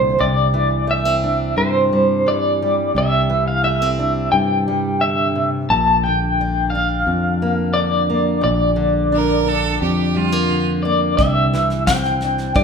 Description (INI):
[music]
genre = acoustic folk duo or small band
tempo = 87 BPM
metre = 4/4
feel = straight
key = unclear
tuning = A4 = 442 Hz
[part]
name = electric guitar through a small old amp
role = melody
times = 0.0-12.6 s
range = C5 to A5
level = -18 LUFS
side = equal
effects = tremolo
[part]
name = fingerpicked steel-string acoustic guitar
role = accompaniment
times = 0.0-12.6 s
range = D2 to D4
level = -23 LUFS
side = equal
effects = none
[part]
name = fingered electric bass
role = bass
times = 0.0-12.6 s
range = Bb1 to G2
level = -21 LUFS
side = left 1 dB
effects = none
[part]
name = clear fiddle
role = second line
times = 9.1-10.7 s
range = F4 to Bb4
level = -21 LUFS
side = right 6 dB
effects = none
[part]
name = soft brush drum kit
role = drums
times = 11.2-12.6 s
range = kick drum, snare drum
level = -22 LUFS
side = equal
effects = none
[sound]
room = moderate recital hall reverb, RT60 1.2 s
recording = recorded in a church or concert hall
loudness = -15 LUFS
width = side -6 dB against mid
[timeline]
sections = 0.2-12.6 A section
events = none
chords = 0.2 Cadd9; 5.7 Bb; 11.2 Cadd9